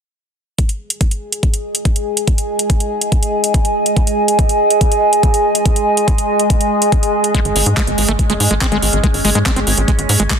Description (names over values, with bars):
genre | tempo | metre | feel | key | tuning
psychedelic trance | 142 BPM | 4/4 | straight | unclear | A4 = 441 Hz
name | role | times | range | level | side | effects
overtone-sweeping drone | sustained chords | 1.3-10.4 s | G#3 to G#4 | -19 LUFS | right 2 dB | chorus, built-in reverb, sidechain pumping
electronic kick drum | drums | 0.6-10.4 s | none | -15 LUFS | equal | none
garage drum kit | drums | 0.6-10.4 s | handclaps, hi-hat | -19 LUFS | right 1 dB | none
warbly tape-like pad | texture | 2.1-10.4 s | G#4 to G#5 | -19 LUFS | left 1 dB | chorus, built-in reverb, sidechain pumping
screaming distorted acid line | riff | 7.3-10.3 s | G#3 to B#3 | -20 LUFS | moving between left 4 dB and right 3 dB | distortion, chorus, auto-pan, sidechain pumping, digital delay
tight sequencer bass | bass | 7.5-10.3 s | G#1 to G#2 | -17 LUFS | equal | none
room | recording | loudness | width
light reverb, digital ambience | dense, heavily limited modern master | -12 LUFS | side -7 dB against mid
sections
0.6-10.4 A section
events
none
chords
0.6 G#5